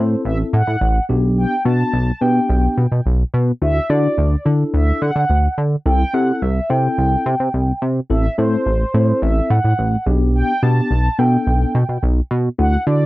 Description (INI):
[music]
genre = dance-pop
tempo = 107 BPM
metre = 4/4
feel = straight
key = unclear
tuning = A4 = 440 Hz
[part]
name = mellow horn-like synth lead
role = melody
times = 0.0-13.1 s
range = C5 to A5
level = -21 LUFS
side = right 1 dB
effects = chorus, slapback echo
[part]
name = mellow tine electric piano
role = accompaniment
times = 0.0-13.1 s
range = B3 to A4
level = -21 LUFS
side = left 2 dB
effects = medium stereo tremolo
[part]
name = chorused synth bass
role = bass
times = 0.0-13.1 s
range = A1 to D3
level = -16 LUFS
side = equal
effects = none
[sound]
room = little or no reverb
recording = dry, close 1970s-style studio recording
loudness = -15 LUFS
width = side -18 dB against mid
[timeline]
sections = 0.0-13.1 A section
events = none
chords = 0.0 Am; 1.1 G/B; 3.6 Dadd9; 5.9 C6; 8.1 Am; 10.1 G/B